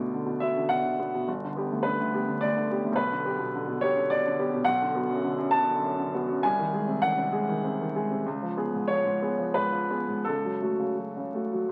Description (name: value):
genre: classical, romantic character piece for solo piano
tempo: 82-109 BPM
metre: 3/4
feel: rubato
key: F# minor from 4.7 s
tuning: A4 = 441 Hz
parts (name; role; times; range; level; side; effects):
- warm grand piano; solo; 0.0-11.7 s; G1 to A5; -28 LUFS; equal; none
room: moderate small room reverb, RT60 0.6 s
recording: very old 78 rpm record, vinyl crackle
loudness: -28 LUFS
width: mono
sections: 0.0-11.7 A section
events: none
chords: 0.0 Bm/D; 1.3 G; 3.0 G/B; 4.7 Bm; 6.4 G#7/B#; 8.3 C#7; 10.3 F#m/C#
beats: 0.10 0.70 | 1.27 1.85 2.42 | 2.97 3.53 4.10 | 4.67 5.24 5.82 | 6.43 7.02 7.63 | 8.25 8.89 9.55 | 10.27 10.98 11.69